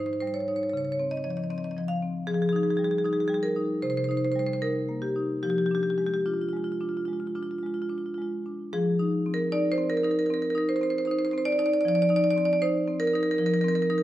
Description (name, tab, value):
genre	classical, contemporary piece for solo marimba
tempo	75 BPM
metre	4/4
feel	uneven beats, rubato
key	F dorian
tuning	A4 = 440 Hz
part	marimba with medium hard mallets	solo	0.0-14.0 s	Ab2 to F5	-24 LUFS	equal	none
room	moderate recital hall reverb, RT60 1.3 s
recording	recorded in a church or concert hall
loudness	-24 LUFS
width	side -14 dB against mid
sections	0.0-8.7 A section; 8.7-14.0 A section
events	none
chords	0.0 Abmaj7; 0.7 Dbmaj7; 2.3 Fm9; 3.8 Cm7; 5.4 Fm6; 8.7 F5